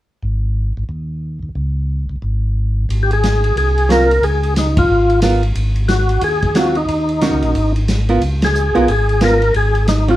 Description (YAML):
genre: soul jazz organ trio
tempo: 180 BPM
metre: 4/4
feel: swing 62% on 8ths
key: Ab mixolydian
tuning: A4 = 440 Hz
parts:
  - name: mellow tonewheel organ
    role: bass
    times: 0.2-10.2 s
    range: Ab1 to Eb2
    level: -17 LUFS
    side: equal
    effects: slow rotary speaker
  - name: vintage drum kit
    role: drums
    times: 2.9-10.1 s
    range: hi-hat, kick drum, ride cymbal, snare drum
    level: -22 LUFS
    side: equal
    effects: none
  - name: percussive tonewheel organ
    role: melody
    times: 3.0-10.2 s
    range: Eb4 to Bb4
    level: -16 LUFS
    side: left 1 dB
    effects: slow rotary speaker, overdrive, chorus vibrato
  - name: archtop guitar, miked and amplified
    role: accompaniment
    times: 3.9-10.2 s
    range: Eb3 to Bb4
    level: -16 LUFS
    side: right 2 dB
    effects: none
room: moderate studio ambience, RT60 0.5 s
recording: heard from further back in the room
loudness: -13 LUFS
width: side -14 dB against mid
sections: 0.2-2.9 A section; 2.9-10.2 B section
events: band accent 4.7, 8.4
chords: 0.2 Ab5; 1.6 Db5; 2.9 Ab13; 4.2 Db6; 5.6 Ab6; 6.9 Ebm7; 7.6 Absus2; 8.2 Db6; 9.6 Ab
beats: | 0.23 0.56 0.90 1.23 | 1.56 1.90 2.23 2.56 | 2.89 3.23 3.56 3.89 | 4.22 4.56 4.89 5.22 | 5.55 5.89 6.22 6.55 | 6.88 7.22 7.55 7.88 | 8.22 8.55 8.88 9.22 | 9.55 9.88